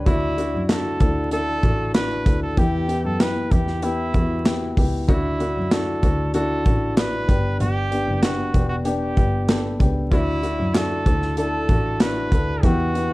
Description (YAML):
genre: piano-driven pop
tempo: 96 BPM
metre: 4/4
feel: straight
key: D major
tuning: A4 = 438 Hz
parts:
  - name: warm upright piano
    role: accompaniment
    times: 0.0-13.1 s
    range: G2 to A4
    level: -24 LUFS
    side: left 2 dB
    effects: plate reverb
  - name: bright double bass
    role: bass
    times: 0.0-13.1 s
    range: E1 to F#2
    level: -25 LUFS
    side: equal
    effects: none
  - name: warm trumpet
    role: melody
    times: 0.1-13.1 s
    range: E4 to B4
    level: -27 LUFS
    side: right 2 dB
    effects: none
  - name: modern studio drum kit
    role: drums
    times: 0.1-13.1 s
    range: handclaps, hi-hat, kick drum, snare drum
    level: -21 LUFS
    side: equal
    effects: none
room: light reverb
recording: vinyl crackle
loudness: -18 LUFS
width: side -20 dB against mid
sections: 0.0-13.1 A section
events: none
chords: 0.1 Dadd9; 2.6 Em; 5.1 Dadd9; 7.3 G; 10.1 Dadd9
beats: | 0.06 0.69 1.32 1.95 | 2.58 3.20 3.83 4.46 | 5.09 5.72 6.34 6.97 | 7.60 8.23 8.86 9.49 | 10.12 10.75 11.38 12.00 | 12.63